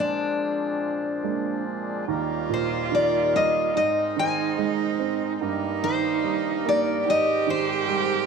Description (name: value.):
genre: acoustic folk-pop ballad.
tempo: 72 BPM.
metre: 4/4.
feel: straight.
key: Eb major.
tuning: A4 = 439 Hz.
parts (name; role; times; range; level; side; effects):
picked steel-string acoustic guitar; melody; 0.0-8.3 s; D4 to Ab5; -24 LUFS; left 3 dB; none.
warm upright piano; accompaniment; 0.0-8.3 s; Eb2 to D4; -29 LUFS; right 11 dB; none.
hand-pumped harmonium; sustained chords; 0.0-8.3 s; Eb2 to Bb4; -31 LUFS; left 2 dB; none.
warm cello; second line; 2.1-8.3 s; Eb4 to G4; -27 LUFS; right 10 dB; none.
room: wet spring reverb, RT60 2.0 s.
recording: 1960s-style stereo.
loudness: -22 LUFS.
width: side -5 dB against mid.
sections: 0.0-2.1 A section; 2.1-8.3 B section.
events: none.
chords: 0.0 Bb7; 2.1 Eb; 3.7 Abadd9; 5.4 Eb/G; 7.0 Abmaj7.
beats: 0.41 1.24 | 2.08 2.91 3.75 4.57 | 5.40 6.23 7.05 7.87.